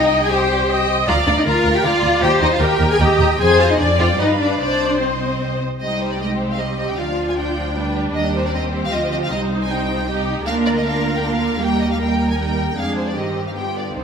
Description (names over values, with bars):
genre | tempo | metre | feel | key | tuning
quick classical-period movement for string orchestra | 155 BPM | 3/4 | rubato | C minor | A4 = 440 Hz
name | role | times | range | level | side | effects
warm studio violin section | melody | 0.0-14.0 s | C5 to Ab5 | -25 LUFS | equal | none
warm studio violin section | second line | 0.0-14.0 s | D4 to Bb5 | -26 LUFS | left 1 dB | none
warm studio viola section | accompaniment | 0.0-14.0 s | D3 to Eb5 | -21 LUFS | equal | none
rich studio cello section | bass | 0.0-14.0 s | C4 to Bb4 | -21 LUFS | left 1 dB | none
warm studio double bass section | bass | 0.0-14.0 s | C2 to G2 | -23 LUFS | right 1 dB | none
room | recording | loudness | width
wet stone room reverb, RT60 1.4 s | none | -16 LUFS | side -6 dB against mid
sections
0.0-5.8 A section; 5.8-14.0 B section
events
none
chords
0.0 Cm; 1.1 Bb/D; 2.2 Eb; 3.4 Fm; 3.8 Ddim/F; 4.2 G7; 4.6 Cm; 7.0 G7/D; 8.2 Cm/Eb; 9.3 Cm; 10.5 Bb/D; 11.6 Eb; 12.8 Ddim/F; 13.2 Cm/G; 13.5 G7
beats
0.31 0.69 | 1.07 1.45 1.84 | 2.22 2.61 3.00 | 3.39 3.78 4.18 | 4.59 5.01 5.41 | 5.82 6.21 6.60 | 6.99 7.38 7.76 | 8.15 8.54 8.92 | 9.31 9.70 10.08 | 10.46 10.84 11.22 | 11.61 11.99 12.38 | 12.76 13.15 13.55 | 13.96